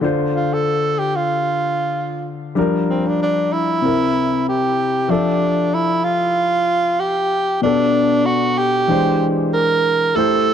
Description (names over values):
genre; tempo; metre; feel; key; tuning
soul; 95 BPM; 4/4; swing 54% on 16ths; F major; A4 = 440 Hz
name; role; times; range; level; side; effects
warm grand piano; accompaniment; 0.0-10.5 s; B2 to E5; -19 LUFS; left 3 dB; none
breathy tenor saxophone; melody; 0.4-10.5 s; C4 to Bb4; -18 LUFS; right 2 dB; none
room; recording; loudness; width
moderate plate reverb, RT60 2.8 s; dark, warm production; -15 LUFS; side -8 dB against mid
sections
0.0-5.1 A section; 5.1-10.5 B section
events
none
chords
0.0 Dm7; 2.6 Gm7; 3.8 C7; 5.1 Fmaj9; 7.6 Bm7; 8.9 E7alt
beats
| 0.03 0.67 1.30 1.93 | 2.56 3.20 3.83 4.46 | 5.10 5.73 6.36 7.00 | 7.63 8.26 8.90 9.53 | 10.16